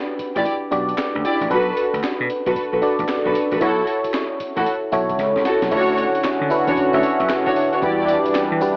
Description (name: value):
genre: R&B, new jack swing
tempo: 114 BPM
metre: 4/4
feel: swing 64% on 16ths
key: unclear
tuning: A4 = 440 Hz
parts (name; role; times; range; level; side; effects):
- FM electric piano; accompaniment; 0.0-8.8 s; D4 to E5; -21 LUFS; equal; chorus, phaser
- vintage slap bass; bass; 0.2-8.6 s; A1 to E3; -27 LUFS; equal; none
- breakbeat sampler-style drum kit; drums; 0.2-8.8 s; crash cymbal, handclaps, hi-hat, kick drum, snare drum, tambourine; -28 LUFS; equal; none
- warm studio string section; stabs; 0.4-8.1 s; D4 to D5; -21 LUFS; equal; none
- brassy analog pad; sustained chords; 5.7-8.8 s; D3 to F#4; -20 LUFS; equal; chorus
room: light reverb, digital ambience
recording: home recording on cassette, AM radio sound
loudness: -17 LUFS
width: side -39 dB against mid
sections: 0.0-5.7 A section; 5.7-8.8 B section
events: drum fill 5.2-5.7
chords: 0.0 Em7; 1.5 Bm7; 3.6 F#m7; 5.7 Dmaj7; 7.8 Em7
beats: 0.45 0.98 | 1.51 2.03 2.56 3.09 | 3.61 4.14 4.67 5.19 | 5.72 6.24 6.77 7.30 | 7.82 8.35